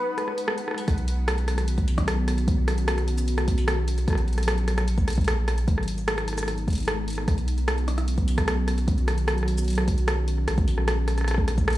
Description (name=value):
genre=IDM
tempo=150 BPM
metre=4/4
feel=straight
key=B major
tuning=A4 = 440 Hz
part: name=warbly nostalgic lead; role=melody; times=0.0-0.7 s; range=B4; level=-33 LUFS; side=left 1 dB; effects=chorus, analog delay, shimmer reverb
part: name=glassy FM pad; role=sustained chords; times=0.0-11.8 s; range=D#3 to F#4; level=-31 LUFS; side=left 1 dB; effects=ensemble chorus, built-in reverb, phaser, shimmer reverb
part: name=bubbling stepped-filter texture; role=texture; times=0.0-0.9 s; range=F#5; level=-46 LUFS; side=right 4 dB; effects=none
part: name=electro analog drum machine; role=drums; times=0.2-11.8 s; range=cabasa, hi-hat, rim click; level=-29 LUFS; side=equal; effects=none
part: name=warm sub bass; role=bass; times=0.9-11.8 s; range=G#1 to B1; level=-25 LUFS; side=equal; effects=none
part: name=electronic kick drum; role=drums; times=0.9-11.7 s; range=none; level=-25 LUFS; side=equal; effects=none
room=light reverb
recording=dry, gritty hardware recording, transformer saturation, studio reverb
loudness=-22 LUFS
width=side -15 dB against mid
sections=0.9-11.8 A section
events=break 0.0-0.9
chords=0.0 G#m; 0.9 Badd9; 4.1 F#/A#; 5.7 G#m; 7.3 Badd9; 10.5 F#/A#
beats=0.08 0.48 | 0.88 1.28 1.68 2.08 | 2.48 2.88 3.28 3.68 | 4.08 4.48 4.88 5.28 | 5.68 6.08 6.48 6.88 | 7.28 7.68 8.08 8.48 | 8.88 9.28 9.68 10.08 | 10.48 10.88 11.28 11.68